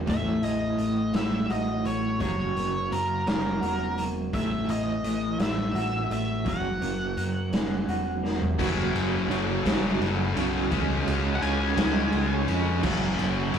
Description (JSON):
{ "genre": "quiet-loud alternative rock", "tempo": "56 BPM (dotted quarters)", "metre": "6/8", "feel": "straight", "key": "unclear", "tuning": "A4 = 441 Hz", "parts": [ { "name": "electric guitar through a small old amp", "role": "arpeggios", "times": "0.0-8.6 s", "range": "F#3 to F#4", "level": "-31 LUFS", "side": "left 2 dB", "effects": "none" }, { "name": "overdriven semi-hollow guitar", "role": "riff", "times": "0.0-13.6 s", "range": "F#2 to C#4", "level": "-31 LUFS", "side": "right 6 dB", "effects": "tremolo" }, { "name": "overdriven fingered electric bass", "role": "bass", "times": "0.0-13.6 s", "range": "E1 to F#2", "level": "-32 LUFS", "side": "left 1 dB", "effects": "none" }, { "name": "octave-fuzz lead guitar", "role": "melody", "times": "0.1-12.4 s", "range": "A#4 to G#5", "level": "-32 LUFS", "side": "equal", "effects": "distortion" }, { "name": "raw garage drum kit", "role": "drums", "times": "0.1-13.6 s", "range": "crash cymbal, hi-hat, kick drum, ride cymbal, snare drum, toms", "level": "-29 LUFS", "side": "equal", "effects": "none" }, { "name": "heavy high-gain guitar", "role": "riff", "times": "8.6-13.6 s", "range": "F#2 to C#4", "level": "-34 LUFS", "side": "left 1 dB", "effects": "distortion" }, { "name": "high-gain distorted guitar", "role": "riff", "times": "8.6-13.6 s", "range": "F#2 to C#4", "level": "-30 LUFS", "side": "left 6 dB", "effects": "distortion" } ], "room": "wet small room reverb, RT60 0.6 s", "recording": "rough rehearsal-room recording, tube saturation", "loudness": "-24 LUFS", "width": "side -8 dB against mid", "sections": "0.0-8.6 A section; 8.6-13.6 B section", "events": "drum fill 8.2-8.6", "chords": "0.1 A5; 2.2 F#; 4.3 A5; 6.5 F#; 8.6 F#5; 10.7 C#; 12.8 F#5", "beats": "| 0.08 1.14 | 2.20 3.27 | 4.33 5.40 | 6.46 7.53 | 8.59 9.65 | 10.72 11.78 | 12.84" }